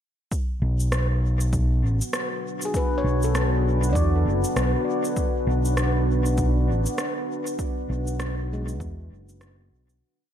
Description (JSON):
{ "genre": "ambient dub", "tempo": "99 BPM", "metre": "4/4", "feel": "swing 60% on 16ths", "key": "B dorian", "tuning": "A4 = 440 Hz", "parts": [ { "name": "deep dark ambient pad", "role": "sustained chords", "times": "1.7-10.0 s", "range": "B3 to F#5", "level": "-27 LUFS", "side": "equal", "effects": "chorus, built-in reverb, vintage 12-bit sampler grit" }, { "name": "electronic cabasa and rim click", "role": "drums", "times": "0.3-10.0 s", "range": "none", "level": "-31 LUFS", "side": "right 1 dB", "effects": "overdrive, dub echo" }, { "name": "electronic kick drum", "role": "drums", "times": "0.3-8.9 s", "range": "none", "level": "-27 LUFS", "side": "equal", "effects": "none" }, { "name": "overdriven fingered electric bass", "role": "bass", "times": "0.6-10.0 s", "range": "F#1 to E2", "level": "-22 LUFS", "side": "equal", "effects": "tube saturation" }, { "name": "handpan", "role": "arpeggios", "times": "2.7-10.3 s", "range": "G#3 to D5", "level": "-32 LUFS", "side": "left 2 dB", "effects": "dub echo" } ], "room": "light reverb", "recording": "none", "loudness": "-21 LUFS", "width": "side -10 dB against mid", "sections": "0.3-10.0 groove", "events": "fade-out 6.8-10.0", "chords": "0.3 Bm9" }